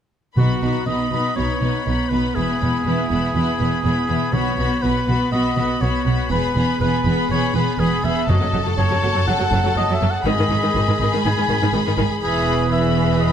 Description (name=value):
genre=cinematic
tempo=122 BPM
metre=4/4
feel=straight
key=B mixolydian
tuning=A4 = 442 Hz
part: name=warm symphonic violin section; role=melody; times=0.4-13.3 s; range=A5 to B5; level=-28 LUFS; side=left 5 dB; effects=none
part: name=rich symphonic violin section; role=second line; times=0.4-13.3 s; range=D#4 to A4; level=-28 LUFS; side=left 3 dB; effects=none
part: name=warm oboe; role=second line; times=0.4-13.3 s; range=F#4 to G#5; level=-24 LUFS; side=equal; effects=none
part: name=rich symphonic viola section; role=accompaniment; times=0.4-13.3 s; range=D#3 to B3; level=-24 LUFS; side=equal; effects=none
part: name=dark symphonic cello section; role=bass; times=0.4-13.3 s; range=E2 to B2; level=-23 LUFS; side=right 2 dB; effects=none
part: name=warm symphonic double bass section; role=bass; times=0.4-13.3 s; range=E1 to B1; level=-24 LUFS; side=right 2 dB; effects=none
part: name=timpani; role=percussion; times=0.4-1.1, 4.3-5.0, 8.3-9.0 s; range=F#2 to B2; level=-25 LUFS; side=left 2 dB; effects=none
room=moderate scoring stage reverb, RT60 1.7 s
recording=none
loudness=-17 LUFS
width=side -9 dB against mid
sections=0.4-13.3 A section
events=none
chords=0.4 B; 2.4 E; 4.3 Bsus2; 6.3 E; 8.3 F#m; 10.3 G#m; 12.2 E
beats=| 0.37 0.87 1.36 1.86 | 2.36 2.85 3.35 3.84 | 4.34 4.83 5.33 5.82 | 6.32 6.81 7.30 7.80 | 8.29 8.78 9.28 9.77 | 10.26 10.75 11.24 11.74 | 12.23 12.72 13.22